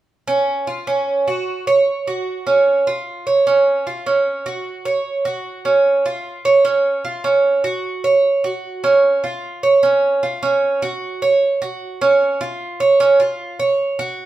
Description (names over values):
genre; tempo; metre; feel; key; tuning
latin; 151 BPM; 4/4; straight; unclear; A4 = 440 Hz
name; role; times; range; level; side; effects
Cuban tres; solo; 0.3-14.3 s; Db4 to Db5; -15 LUFS; right 2 dB; none
room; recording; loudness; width
moderate large studio reverb, RT60 0.8 s; band playing live in one room; -15 LUFS; side -14 dB against mid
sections
0.3-13.0 A section; 13.0-14.3 B section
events
none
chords
none